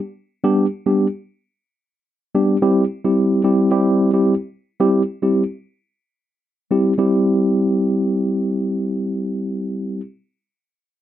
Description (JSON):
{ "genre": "afrobeats", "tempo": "110 BPM", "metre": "4/4", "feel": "swing 55% on 16ths", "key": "C major", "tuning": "A4 = 440 Hz", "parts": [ { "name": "mellow tine electric piano", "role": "solo", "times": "0.4-10.0 s", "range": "G3 to G4", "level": "-16 LUFS", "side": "equal", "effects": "fast stereo tremolo" } ], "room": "moderate studio ambience, RT60 0.5 s", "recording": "none", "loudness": "-16 LUFS", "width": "side -12 dB against mid", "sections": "0.0-2.6 A section; 2.6-7.0 B section; 7.0-11.0 C section", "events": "none", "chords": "0.0 G; 2.6 C" }